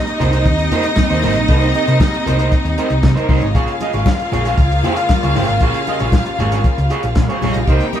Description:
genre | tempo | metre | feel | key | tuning
disco | 116 BPM | 4/4 | straight | Bb dorian | A4 = 440 Hz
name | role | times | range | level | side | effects
clear studio string section | second line | 0.0-8.0 s | Bb3 to G5 | -21 LUFS | left 1 dB | none
clear studio string section | sustained chords | 0.0-8.0 s | C3 to Eb4 | -24 LUFS | left 2 dB | none
electric guitar through a small old amp | accompaniment | 0.1-8.0 s | Eb4 to Eb5 | -21 LUFS | right 3 dB | none
warm soul drum kit | drums | 0.1-8.0 s | handclaps, hi-hat, kick drum, snare drum | -17 LUFS | equal | none
hollow-body short-scale fingered electric bass | bass | 0.2-7.8 s | G1 to C3 | -18 LUFS | equal | none
congas | percussion | 0.2-8.0 s | none | -25 LUFS | left 2 dB | none
room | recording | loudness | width
moderate studio ambience, RT60 0.5 s | band playing live in one room | -13 LUFS | side -10 dB against mid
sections
0.0-8.0 A section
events
none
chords
0.0 Cm7; 3.5 Bbm7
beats
0.46 0.97 | 1.49 2.00 2.52 3.03 | 3.55 4.07 4.58 5.10 | 5.61 6.13 6.64 7.16 | 7.67

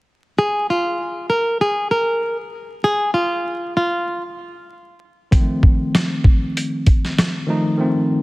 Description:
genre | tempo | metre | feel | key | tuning
hip hop, boom-bap hip-hop | 97 BPM | 4/4 | swing 55% on 16ths | unclear | A4 = 437 Hz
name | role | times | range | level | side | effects
flamenco guitar | melody | 0.4-4.2 s | F4 to Bb4 | -18 LUFS | equal | high-pass filter, low-pass filter
mellow tine electric piano | accompaniment | 5.3-8.2 s | Eb3 to Eb4 | -20 LUFS | equal | medium stereo tremolo, high-pass filter, low-pass filter
boom bap sampler-style drum kit | drums | 5.3-7.3 s | hi-hat, kick drum, rim click, snare drum | -14 LUFS | equal | none
room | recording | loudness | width
light reverb | dense, heavily limited modern master, vinyl crackle | -16 LUFS | side -21 dB against mid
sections
0.4-8.2 A section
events
drums muted 7.8-8.2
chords
0.4 N.C.; 5.3 F7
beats
| 0.37 0.99 1.61 2.23 | 2.85 3.47 4.08 4.70 | 5.32 5.94 6.56 7.18 | 7.80

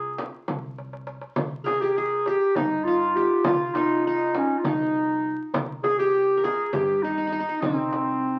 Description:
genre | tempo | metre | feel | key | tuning
Turkish makam ensemble | 202 BPM (eighths) | 7/8 | straight | C minor | A4 = 440 Hz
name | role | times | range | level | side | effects
warm clarinet | melody | 0.0-8.4 s | C4 to Ab4 | -26 LUFS | equal | none
qanun | second line | 0.0-8.4 s | C4 to Bb4 | -28 LUFS | equal | none
upright bass | bass | 0.0-8.4 s | C2 to G2 | -42 LUFS | equal | none
darbuka | percussion | 0.2-8.1 s | none | -40 LUFS | equal | none
frame drum | percussion | 0.2-8.1 s | none | -32 LUFS | equal | none
room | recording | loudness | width
wet studio reverb, RT60 0.6 s | very old 78 rpm record, vinyl crackle | -24 LUFS | mono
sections
0.0-8.4 A section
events
drum fill 0.8-1.4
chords
none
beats
0.19 0.49 0.79 1.08 | 1.38 1.68 1.97 2.27 2.57 2.87 3.16 | 3.46 3.76 4.05 4.35 4.65 4.95 5.25 | 5.54 5.84 6.14 6.44 6.73 7.03 7.33 | 7.63 7.92 8.22

